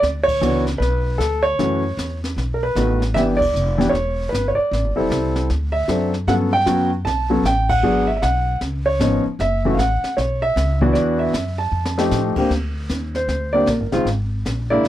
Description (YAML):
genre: jazz piano trio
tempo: 154 BPM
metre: 4/4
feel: swing 64% on 8ths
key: D major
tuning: A4 = 436 Hz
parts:
  - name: warm baby grand piano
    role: melody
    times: 0.0-14.9 s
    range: D3 to A5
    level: -18 LUFS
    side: equal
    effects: none
  - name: upright bass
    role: bass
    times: 0.0-14.9 s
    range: E1 to A2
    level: -22 LUFS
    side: equal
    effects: none
  - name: jazz brush drum kit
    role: drums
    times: 0.0-14.9 s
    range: brushed snare drum, crash cymbal, hi-hat, kick drum, snare drum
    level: -29 LUFS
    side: equal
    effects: none
room: light reverb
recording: none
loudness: -17 LUFS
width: side -13 dB against mid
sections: 0.0-12.5 A section; 12.5-14.9 B section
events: band accent 0.2, 3.4, 7.6; drum fill 11.7-12.1; grand piano solo 12.5-14.9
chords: 0.0 D5; 1.6 F#m7; 2.4 B7; 3.2 Em7; 4.7 Am7; 5.5 D7; 6.3 Gmaj9#11; 7.8 G#m7b5; 8.6 C#7; 9.4 F#m7; 10.9 E5; 11.7 F9; 12.5 Bbadd9; 14.1 Bb7/Ab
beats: | 0.03 0.42 0.81 1.21 | 1.59 1.99 2.38 2.77 | 3.15 3.54 3.94 4.33 | 4.71 5.10 5.49 5.88 | 6.27 6.66 7.05 7.44 | 7.83 8.22 8.61 9.00 | 9.39 9.78 10.17 10.56 | 10.95 11.34 11.72 12.11 | 12.50 12.89 13.28 13.67 | 14.06 14.45 14.84